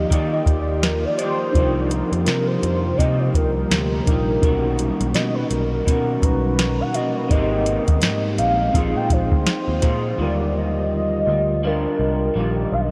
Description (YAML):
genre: indie pop, bedroom pop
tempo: 83 BPM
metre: 4/4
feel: swing 60% on 16ths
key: Eb major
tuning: A4 = 440 Hz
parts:
  - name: warm velvety synth lead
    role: melody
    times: 0.0-12.9 s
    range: Bb4 to G5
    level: -26 LUFS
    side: equal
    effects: subtle chorus, diffuse ambient delay
  - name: electric guitar through a small old amp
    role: accompaniment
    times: 0.0-12.9 s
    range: B2 to D5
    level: -28 LUFS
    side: equal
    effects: analog chorus, warbly pitch drift
  - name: mellow reed electric piano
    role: accompaniment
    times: 0.0-12.9 s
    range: D3 to A#5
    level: -31 LUFS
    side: equal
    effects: fast tremolo, cassette tape
  - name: ethereal airy pad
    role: sustained chords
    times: 0.0-10.2 s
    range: B2 to G4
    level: -32 LUFS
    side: equal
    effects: none
  - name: vintage muted picked electric bass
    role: bass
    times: 0.0-12.9 s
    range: Ab1 to Eb3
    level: -26 LUFS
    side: equal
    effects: none
  - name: soft vintage rhythm box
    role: drums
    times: 0.1-10.0 s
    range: hi-hat, kick drum, snare drum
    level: -25 LUFS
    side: equal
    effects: none
room: wet huge ambient reverb, RT60 8.3 s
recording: dreamy mix soaked in reverb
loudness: -20 LUFS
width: mono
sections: 0.0-10.2 A section; 10.2-12.9 B section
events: soft synth lead solo 0.0-10.2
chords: 0.0 Ebmaj9; 1.5 Cm11; 4.4 Bmaj9; 7.3 Abmaj9; 8.8 Bb9sus4; 10.2 Ebmaj9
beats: 0.11 0.83 | 1.55 2.27 2.99 3.71 | 4.43 5.15 5.87 6.59 | 7.31 8.03 8.75 9.47 | 10.19 10.91 11.63 12.36